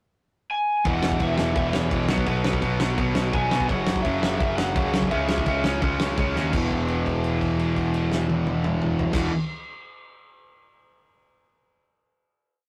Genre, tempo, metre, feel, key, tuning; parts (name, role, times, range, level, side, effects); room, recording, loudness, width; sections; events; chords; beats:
punk rock; 170 BPM; 4/4; straight; E major; A4 = 441 Hz
lead guitar through a small cranked amp; melody; 0.5-5.6 s; B4 to G#5; -30 LUFS; equal; overdrive, delay
raw garage guitar; riff; 0.8-9.3 s; E2 to C#4; -32 LUFS; equal; overdrive
loose indie drum kit; drums; 0.8-9.2 s; crash cymbal, kick drum, snare drum, toms; -30 LUFS; equal
distorted electric guitar; riff; 0.9-9.3 s; E2 to C#4; -30 LUFS; equal; overdrive
thick fuzz guitar; riff; 0.9-9.3 s; E2 to C#4; -32 LUFS; equal; distortion
fuzz picked electric bass; bass; 0.9-9.3 s; E1 to B2; -31 LUFS; equal; overdrive
light reverb; rough rehearsal-room recording, tube saturation; -24 LUFS; mono
0.0-0.9 pickup bar; 0.9-6.5 riff; 6.5-9.3 final chord
drum fill 6.3; held note 6.5-9.1
0.0 N.C.; 0.9 E5; 2.1 B5; 3.7 F#5; 5.1 C#m; 6.5 E5
0.15 0.50 | 0.85 1.21 1.56 1.91 | 2.27 2.62 2.98 3.33 | 3.69 4.04 4.40 4.75 | 5.11 5.46 5.82 6.17 | 6.53 6.88 7.23 7.58 | 7.94 8.29 8.64 8.99